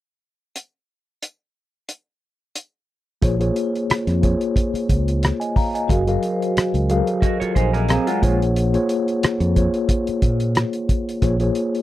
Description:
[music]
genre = lush 1970s-style soul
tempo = 90 BPM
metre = 4/4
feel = swing 54% on 16ths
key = Bb minor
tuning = A4 = 439 Hz
[part]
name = cloth-damped thuddy drum kit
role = drums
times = 0.6-11.8 s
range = hi-hat, kick drum, rim click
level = -21 LUFS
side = equal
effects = none
[part]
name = mellow tine electric piano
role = accompaniment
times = 3.2-11.8 s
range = Gb3 to Bb5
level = -21 LUFS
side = left 2 dB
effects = medium stereo tremolo
[part]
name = fingered electric bass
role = bass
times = 3.2-11.5 s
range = Gb1 to Bb2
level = -20 LUFS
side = equal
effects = none
[part]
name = vibraphone with soft mallets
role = texture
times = 3.6-7.7 s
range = F4 to C5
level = -30 LUFS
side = right 4 dB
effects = none
[part]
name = electric guitar through a small old amp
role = riff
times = 7.2-8.4 s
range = Ab3 to Eb5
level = -24 LUFS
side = right 6 dB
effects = none
[sound]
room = little or no reverb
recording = dry, close 1970s-style studio recording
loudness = -17 LUFS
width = side -15 dB against mid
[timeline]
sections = 0.6-3.2 A section; 3.2-11.8 B section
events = none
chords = 0.6 N.C.; 3.2 Bbm7; 5.9 Gbmaj7; 8.2 Bbm7

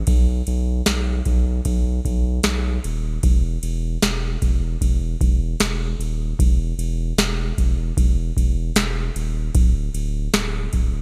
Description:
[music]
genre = dream pop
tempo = 76 BPM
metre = 4/4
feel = straight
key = unclear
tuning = A4 = 439 Hz
[part]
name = saturated sub bass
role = bass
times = 0.0-11.0 s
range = D1 to B1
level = -25 LUFS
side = equal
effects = none
[part]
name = booming analog drum machine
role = drums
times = 0.1-10.9 s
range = kick drum, ride cymbal, snare drum, tambourine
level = -21 LUFS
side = equal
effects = gated reverb
[sound]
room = little or no reverb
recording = bright 1980s-style digital production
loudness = -21 LUFS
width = mono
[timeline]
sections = 0.0-11.0 A section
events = none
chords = none

